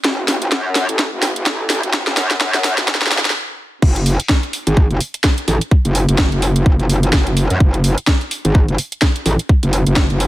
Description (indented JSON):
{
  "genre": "bass house",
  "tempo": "127 BPM",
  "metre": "4/4",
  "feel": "swing 58% on 16ths",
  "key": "F# minor",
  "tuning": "A4 = 440 Hz",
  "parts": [
    { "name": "metallic wobble bass", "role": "bass", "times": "0.0-10.3 s", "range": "E1 to F#2", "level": "-16 LUFS", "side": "equal", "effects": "distortion, chorus, overdrive, sidechain pumping, high-pass filter" },
    { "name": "electronic kick drum", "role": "drums", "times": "0.0-10.1 s", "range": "none", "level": "-13 LUFS", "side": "equal", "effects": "overdrive, high-pass filter on kick" },
    { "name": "garage drum kit", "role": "drums", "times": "0.0-10.3 s", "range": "crash cymbal, hi-hat, snare drum", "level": "-18 LUFS", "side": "equal", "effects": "overdrive" }
  ],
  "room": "little or no reverb",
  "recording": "high-pass filter",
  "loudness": "-14 LUFS",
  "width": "side -16 dB against mid",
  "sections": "0.0-3.8 A section; 3.8-10.3 B section",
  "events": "build-up 0.0-3.8; drum fill 0.0-3.4; filter sweep 0.0-3.8; stop 3.4-3.8; drop 3.8-10.3",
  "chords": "none"
}